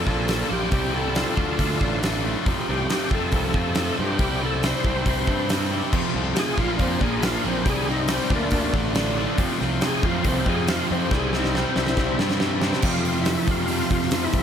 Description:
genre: classic rock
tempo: 139 BPM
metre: 4/4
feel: straight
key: F major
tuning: A4 = 437 Hz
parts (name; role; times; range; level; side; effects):
- overdriven tonewheel organ; melody; 0.0-14.4 s; Bb3 to C5; -28 LUFS; left 2 dB; slow rotary speaker, chorus vibrato
- overdriven semi-hollow guitar; riff; 0.0-14.4 s; F2 to D4; -29 LUFS; right 13 dB; phaser
- tight distorted guitar; riff; 0.0-14.4 s; F2 to F4; -29 LUFS; left 13 dB; distortion
- fuzz picked electric bass; bass; 0.0-14.4 s; A1 to G2; -27 LUFS; equal; overdrive
- huge arena drum kit; drums; 0.1-14.4 s; crash cymbal, hi-hat, kick drum, snare drum; -25 LUFS; equal; none
- crunchy overdriven guitar; riff; 5.9-14.4 s; F2 to D4; -28 LUFS; equal; none
room: light reverb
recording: none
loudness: -20 LUFS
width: side -8 dB against mid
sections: 0.0-12.8 A section; 12.8-14.4 B section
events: tonewheel organ solo 0.0-12.8; drum fill 11.1-12.8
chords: 0.0 Bb; 0.7 C; 1.4 Dm; 2.5 F; 4.2 C; 5.9 F; 6.6 Bb; 7.7 C; 8.3 Dm; 9.4 F; 11.1 C; 12.8 F

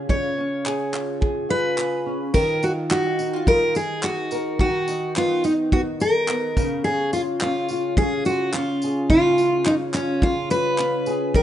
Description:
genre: acoustic pop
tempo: 107 BPM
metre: 4/4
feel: straight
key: unclear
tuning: A4 = 441 Hz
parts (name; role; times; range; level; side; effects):
- nylon-string guitar; accompaniment; 0.0-11.4 s; C#3 to A#4; -25 LUFS; equal; double-tracked left and right
- picked steel-string acoustic guitar; melody; 0.1-11.4 s; C#4 to C#5; -21 LUFS; equal; none
- soft brush drum kit; drums; 0.1-11.4 s; crash cymbal, handclaps, kick drum, tambourine; -25 LUFS; equal; none
room: studio reverb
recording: rough home demo mix, nothing above 10.6 kHz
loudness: -19 LUFS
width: side -11 dB against mid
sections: 0.0-2.3 A section; 2.3-11.4 B section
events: none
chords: 0.0 C#; 2.3 D#madd9; 4.6 B/D#; 6.6 C#

